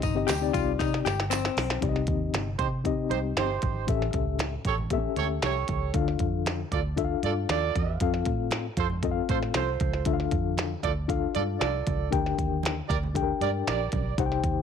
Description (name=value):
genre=uptempo 1960s-style soul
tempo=117 BPM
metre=4/4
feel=straight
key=C dorian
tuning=A4 = 440 Hz
part: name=mellow reed electric piano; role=accompaniment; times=0.0-14.6 s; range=A2 to G5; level=-30 LUFS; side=left 12 dB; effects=fast tremolo
part: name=hollow-body jazz guitar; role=riff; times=0.0-1.8 s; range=C4 to G4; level=-30 LUFS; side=left 12 dB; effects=none
part: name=vintage muted fingered electric bass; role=bass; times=0.0-14.6 s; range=G1 to C3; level=-31 LUFS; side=right 1 dB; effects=none
part: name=glitchy drum kit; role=drums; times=0.0-14.6 s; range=hi-hat, kick drum, snare drum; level=-30 LUFS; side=right 1 dB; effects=none
part: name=tambourine and handclaps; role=percussion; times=0.0-1.4 s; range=none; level=-38 LUFS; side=right 13 dB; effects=none
part: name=congas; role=percussion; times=0.3-14.6 s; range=none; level=-41 LUFS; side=right 12 dB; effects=none
part: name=warm horn section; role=second line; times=2.6-14.2 s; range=Eb4 to D5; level=-30 LUFS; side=right 12 dB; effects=none
room=light reverb, small room ambience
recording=1960s-style stereo with parts hard left and right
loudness=-25 LUFS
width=side -7 dB against mid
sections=0.0-1.8 A section; 1.8-14.6 B section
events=drum fill 0.8-1.8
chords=0.0 Cm; 3.9 A7; 6.0 Dm; 8.0 F; 10.1 Dm; 12.1 Gm/D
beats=0.29 0.80 1.32 | 1.83 2.34 2.86 3.37 | 3.89 4.41 4.92 5.43 | 5.95 6.47 6.98 7.50 | 8.01 8.53 9.04 9.55 | 10.07 10.58 11.10 11.61 | 12.12 12.64 13.15 13.66 | 14.18